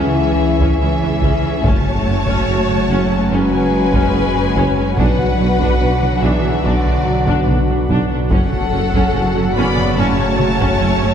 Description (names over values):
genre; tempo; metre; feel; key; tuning
cinematic, hybrid orchestral and electronic film score; 72 BPM; 4/4; straight; F# minor; A4 = 441 Hz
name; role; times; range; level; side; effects
rich symphonic violin section; melody; 0.0-11.1 s; D5 to B5; -24 LUFS; left 4 dB; none
warm symphonic violin section; second line; 0.0-11.1 s; F#4 to D5; -23 LUFS; left 4 dB; none
warm symphonic viola section; accompaniment; 0.0-11.1 s; C#4 to F#4; -23 LUFS; equal; none
mellow French horn section; sustained chords; 0.0-11.1 s; C#3 to F#4; -24 LUFS; left 4 dB; none
soft additive organ-like pad; sustained chords; 0.0-11.1 s; C#3 to G#5; -26 LUFS; equal; none
warm trombone section; sustained chords; 0.0-11.1 s; B2 to F#3; -25 LUFS; right 3 dB; none
dark detuned saw bass; bass; 0.0-11.1 s; F#1 to C#2; -22 LUFS; equal; none
dark tuba; bass; 0.0-10.9 s; F#1 to C#2; -24 LUFS; right 2 dB; none
rich symphonic cello section; bass; 0.0-11.1 s; D3 to B3; -23 LUFS; right 2 dB; none
warm symphonic double bass section; bass; 0.0-11.1 s; F#1 to F#2; -23 LUFS; right 3 dB; none
taiko ensemble; drums; 0.6-11.1 s; none; -22 LUFS; equal; none
room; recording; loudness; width
wet concert hall reverb, RT60 2.5 s; dark, warm production; -13 LUFS; side -8 dB against mid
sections
0.0-11.1 A section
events
none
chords
0.0 C#m; 1.6 F#m; 5.0 Bm; 8.3 F#m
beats
0.81 | 1.64 2.48 3.31 4.14 | 4.98 5.81 6.64 7.48 | 8.31 9.14 9.98 10.81